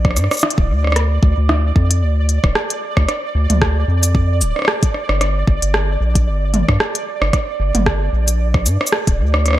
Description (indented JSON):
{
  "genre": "IDM",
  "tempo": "113 BPM",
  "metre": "4/4",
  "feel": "swing 56% on 16ths",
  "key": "G minor",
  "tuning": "A4 = 442 Hz",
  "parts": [
    { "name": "round analog bass", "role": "bass", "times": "0.0-9.6 s", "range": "D1 to G2", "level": "-16 LUFS", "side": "equal", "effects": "none" },
    { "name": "electronic kick drum", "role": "drums", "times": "0.0-9.2 s", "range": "none", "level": "-16 LUFS", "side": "equal", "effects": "none" },
    { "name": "organic electronic drum kit", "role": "drums", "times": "0.0-9.6 s", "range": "hi-hat, rim click, shaker, toms", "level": "-19 LUFS", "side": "equal", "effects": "none" },
    { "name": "pulsing gated texture", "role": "texture", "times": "0.0-9.6 s", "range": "D5", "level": "-26 LUFS", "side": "right 5 dB", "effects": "chorus, built-in reverb" }
  ],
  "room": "light reverb",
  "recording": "none",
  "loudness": "-14 LUFS",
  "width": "side -14 dB against mid",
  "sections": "0.0-9.6 A section",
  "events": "none",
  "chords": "0.0 Gm; 1.0 Dm; 5.2 Gm",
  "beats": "0.43 | 0.96 1.49 2.02 2.55 | 3.08 3.62 4.15 4.68 | 5.21 5.74 6.27 6.80 | 7.33 7.86 8.39 8.93 | 9.46"
}